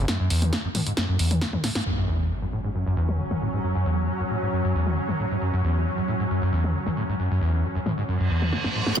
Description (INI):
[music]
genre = driving peak-time techno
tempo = 135 BPM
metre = 4/4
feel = straight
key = F# minor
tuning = A4 = 440 Hz
[part]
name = overdriven acid bass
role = riff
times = 0.0-9.0 s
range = E2 to A2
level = -24 LUFS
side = equal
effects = lush chorus, sidechain pumping
[part]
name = punchy analog drum machine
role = drums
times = 0.1-9.0 s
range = crash cymbal, hi-hat, snare drum, toms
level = -28 LUFS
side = left 1 dB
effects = sidechain pumping on hats, low-pass filter on hats, sidechain pumping on toms, low-pass filter on toms, low-pass filter on snare, sidechain pumping on cymbals, low-pass filter on cymbals
[part]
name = swarming drone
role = drone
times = 2.5-9.0 s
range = F#3 to C#4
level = -29 LUFS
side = right 1 dB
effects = built-in reverb, sidechain pumping
[part]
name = impact and reverse cymbal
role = sound effects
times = 1.9-3.6, 8.2-9.0 s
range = none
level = -32 LUFS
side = right 1 dB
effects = none
[part]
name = wavetable chord stab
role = stabs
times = 9.0 s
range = C#4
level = -21 LUFS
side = right 2 dB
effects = sidechain pumping
[sound]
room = moderate lush hall reverb, RT60 1.9 s, digital ambience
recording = dense, heavily limited modern master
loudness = -22 LUFS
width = side -9 dB against mid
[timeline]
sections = 0.0-1.9 A section; 1.9-9.0 B section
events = drum fill 1.6, 8.5-9.0; band accent 1.7; impact 1.9-3.6; filter sweep on acid bass 1.9-9.0; reverse cymbal 8.2-9.0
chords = 0.0 N.C.; 1.9 F#5